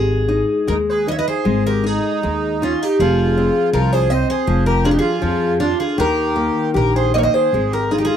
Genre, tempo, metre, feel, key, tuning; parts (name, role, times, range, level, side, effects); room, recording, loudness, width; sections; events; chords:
fado-style ballad; 79 BPM; 2/4; rubato; Ab major; A4 = 440 Hz
picked twelve-string acoustic guitar; melody; 0.0-8.2 s; F4 to E5; -19 LUFS; equal
nylon-string guitar; accompaniment; 0.0-8.2 s; Eb3 to G4; -21 LUFS; left 3 dB
upright bass; bass; 0.0-8.0 s; F1 to F2; -20 LUFS; equal
accordion; second line; 0.7-8.2 s; Db4 to C#5; -24 LUFS; right 8 dB
light reverb; dry, close 1970s-style studio recording; -15 LUFS; side -9 dB against mid
0.0-1.5 A section; 1.5-8.2 B section
0.0 G#5; 3.0 Fm; 4.5 Fm6; 6.0 Eb; 7.5 Ab